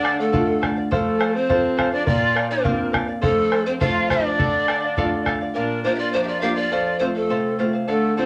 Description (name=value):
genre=andean folk, Andean ensemble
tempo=103 BPM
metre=2/4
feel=straight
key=unclear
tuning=A4 = 439 Hz
part: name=breathy bright pan flute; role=melody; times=0.0-8.3 s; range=A4 to F5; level=-25 LUFS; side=equal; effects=none
part: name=clear viola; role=second line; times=0.0-8.3 s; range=A3 to G4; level=-28 LUFS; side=equal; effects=none
part: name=charango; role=accompaniment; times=0.0-8.3 s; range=A4 to F5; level=-28 LUFS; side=equal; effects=none
part: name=nylon-string guitar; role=accompaniment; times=0.0-8.3 s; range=F2 to A4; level=-28 LUFS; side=equal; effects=none
part: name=bombo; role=percussion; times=0.0-5.4 s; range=none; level=-27 LUFS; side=equal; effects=none
room=wet studio ambience, RT60 0.5 s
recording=none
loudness=-21 LUFS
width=mono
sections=0.0-5.6 A section; 5.6-8.3 B section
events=none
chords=0.0 Dm; 0.9 F; 2.1 Bb; 3.2 F; 4.4 Dm; 5.6 Bb; 6.7 F